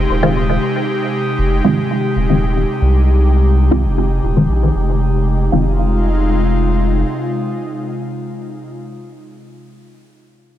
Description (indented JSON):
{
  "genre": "techno",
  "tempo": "116 BPM",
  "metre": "4/4",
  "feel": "swing 53% on 16ths",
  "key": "F minor",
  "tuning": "A4 = 439 Hz",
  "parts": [
    { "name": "airy breathy pad", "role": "sustained chords", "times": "0.0-8.8 s", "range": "C3 to G4", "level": "-19 LUFS", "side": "equal", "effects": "chorus" },
    { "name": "round analog bass", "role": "bass", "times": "0.0-7.0 s", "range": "Eb1 to C2", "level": "-15 LUFS", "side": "equal", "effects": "none" },
    { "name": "filtered dub chord stab", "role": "stabs", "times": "0.2-8.8 s", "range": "Eb3 to F4", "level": "-18 LUFS", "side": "equal", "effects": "phaser, dub echo" }
  ],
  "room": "light reverb, digital ambience",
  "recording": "echo-heavy mix",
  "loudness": "-13 LUFS",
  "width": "side -12 dB against mid",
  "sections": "0.0-5.5 A section; 5.5-9.7 B section",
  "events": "filter sweep on synth stab 0.0-5.5",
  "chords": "0.0 Fm7"
}